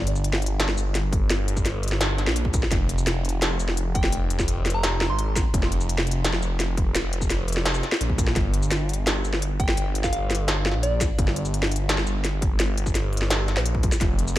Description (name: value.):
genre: half-time drum and bass.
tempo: 170 BPM.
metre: 4/4.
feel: half-time.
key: G phrygian.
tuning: A4 = 440 Hz.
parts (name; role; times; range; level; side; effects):
soft synth bell; melody; 0.0, 3.9-5.2, 9.6-11.3 s; D5 to C6; -32 LUFS; equal; chorus, vintage 12-bit sampler grit, diffuse ambient delay.
phased detuned saw bass; bass; 0.0-14.4 s; F1 to Bb1; -24 LUFS; equal; phaser.
industrial drum kit; drums; 0.1-14.4 s; hi-hat, shaker, snare drum; -26 LUFS; equal; none.
electronic kick drum; drums; 1.1-14.1 s; none; -25 LUFS; equal; none.
room: light reverb, digital ambience.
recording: none.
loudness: -21 LUFS.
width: side -15 dB against mid.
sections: 0.0-14.4 A section.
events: none.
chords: 0.0 Gm; 2.7 N.C.; 8.4 Gm.